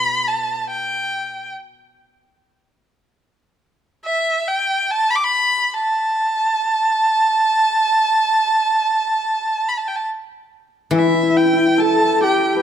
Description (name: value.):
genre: chinese traditional, Chinese chamber ensemble.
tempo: 70 BPM.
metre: 4/4.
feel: rubato.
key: unclear.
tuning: A4 = 439 Hz.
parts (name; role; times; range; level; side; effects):
clear erhu; melody; 0.0-12.6 s; E5 to D6; -17 LUFS; right 1 dB; none.
guzheng; accompaniment; 0.0-1.5, 10.9-12.6 s; B2 to E3; -24 LUFS; left 4 dB; none.
dark horsehead fiddle; second line; 10.9-12.6 s; E4 to A4; -18 LUFS; left 9 dB; none.
hammered dulcimer; second line; 10.9-12.6 s; E4 to B4; -19 LUFS; right 7 dB; none.
room: moderate recital hall reverb, RT60 1.8 s.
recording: close, detailed microphones.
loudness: -16 LUFS.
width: side -9 dB against mid.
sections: 0.0-10.9 A section; 10.9-12.6 B section.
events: none.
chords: none.